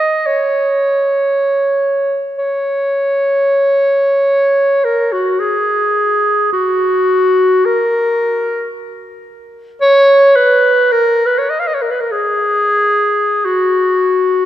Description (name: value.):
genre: classical, free, expressive piece for unaccompanied clarinet.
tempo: 34-58 BPM.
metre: 3/4.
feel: rubato.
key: F# major.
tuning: A4 = 439 Hz.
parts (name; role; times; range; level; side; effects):
clear clarinet; solo; 0.0-14.5 s; F#4 to E#5; -11 LUFS; equal; none.
room: wet church reverb, RT60 3.3 s.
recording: none.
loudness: -11 LUFS.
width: side -12 dB against mid.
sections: 0.0-3.1 A section; 3.1-14.5 B section.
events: none.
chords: none.